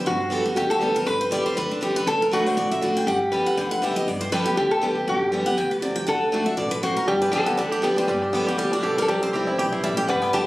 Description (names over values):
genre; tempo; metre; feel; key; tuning
bluegrass; 239 BPM; 4/4; swing 55% on 8ths; G major; A4 = 440 Hz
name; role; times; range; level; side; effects
picked steel-string acoustic guitar; melody; 0.0-10.5 s; D4 to A5; -27 LUFS; equal; plate reverb
lap resonator guitar; second line; 0.0-10.5 s; F#4 to B4; -24 LUFS; equal; none
picked steel-string acoustic guitar; accompaniment; 0.0-10.5 s; G2 to G4; -26 LUFS; equal; none
upright bass; bass; 0.1-10.4 s; G1 to D2; -35 LUFS; equal; none
bluegrass banjo; melody; 7.1-10.5 s; G3 to G4; -27 LUFS; right 1 dB; plate reverb
room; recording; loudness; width
moderate studio reverb, RT60 0.9 s; recorded on a phone in the room, club reverb, compression; -20 LUFS; side -17 dB against mid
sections
0.0-10.5 A section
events
none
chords
0.0 G; 2.1 D; 3.1 G; 6.1 D; 7.1 G; 9.1 C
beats
| 0.06 0.31 0.56 0.81 | 1.06 1.31 1.56 1.82 | 2.07 2.32 2.57 2.82 | 3.07 3.32 3.57 3.82 | 4.07 4.32 4.57 4.82 | 5.08 5.33 5.58 5.83 | 6.08 6.33 6.58 6.83 | 7.08 7.33 7.58 7.83 | 8.08 8.33 8.58 8.83 | 9.08 9.33 9.58 9.83 | 10.08 10.33